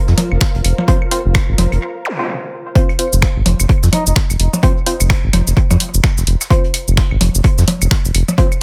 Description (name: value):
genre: minimal techno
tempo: 128 BPM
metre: 4/4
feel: swing 59% on 16ths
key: unclear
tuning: A4 = 439 Hz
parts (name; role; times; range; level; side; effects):
- flickering grainy texture; texture; 0.0-1.8 s; Bb4; -35 LUFS; equal; built-in reverb, sidechain pumping
- granular cloud pad; texture; 0.0-1.8 s; F4 to F5; -31 LUFS; equal; built-in reverb, sidechain pumping
- round analog bass; bass; 0.1-8.2 s; F1 to F2; -16 LUFS; equal; sidechain pumping
- vintage brush drum kit; drums; 0.1-8.6 s; hi-hat, snare drum; -33 LUFS; equal; sidechain pumping on hats, high-pass filter on hats, high-pass filter on snare, high-pass filter on room
- punchy analog drum machine; drums; 0.2-8.6 s; finger snaps, hi-hat, shaker; -22 LUFS; equal; overdrive, dub echo
- percussion blips and claves; percussion; 0.2-8.6 s; none; -23 LUFS; equal; analog delay
- electronic kick drum; drums; 0.4-8.5 s; none; -17 LUFS; equal; overdrive
- filtered dub chord stab; stabs; 0.9-8.5 s; C4 to C5; -26 LUFS; equal; chorus, dub echo
- zap; sound effects; 2.1-2.2 s; none; -25 LUFS; equal; none
- trumpet with bucket mute; melody; 3.9-4.1 s; Eb4; -28 LUFS; equal; dub echo
room: digital ambience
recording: echo-heavy mix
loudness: -14 LUFS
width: mono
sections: 0.0-2.8 A section; 2.8-8.6 B section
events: break 1.8-2.8; drop 2.8-8.6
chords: 0.0 F5